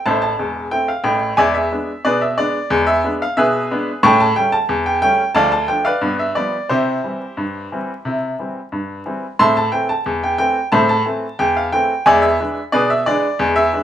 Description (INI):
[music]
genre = ragtime piano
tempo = 90 BPM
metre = 2/4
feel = straight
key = unclear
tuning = A4 = 441 Hz
[part]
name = bright upright piano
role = solo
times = 0.0-13.8 s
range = E1 to C#6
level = -15 LUFS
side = equal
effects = none
[sound]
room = moderate large studio reverb, RT60 0.9 s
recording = band playing live in one room, vinyl crackle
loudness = -15 LUFS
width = side -10 dB against mid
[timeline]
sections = 0.0-9.4 A section; 9.4-13.8 A section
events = none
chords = 0.0 Am; 1.4 E7; 4.0 A7; 5.4 Dm; 6.0 G7; 6.7 C; 9.4 Am; 12.1 E7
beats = | 0.05 0.72 | 1.38 2.04 | 2.71 3.37 | 4.03 4.70 | 5.36 6.03 | 6.70 7.38 | 8.05 8.72 | 9.39 10.06 | 10.73 11.40 | 12.06 12.73 | 13.39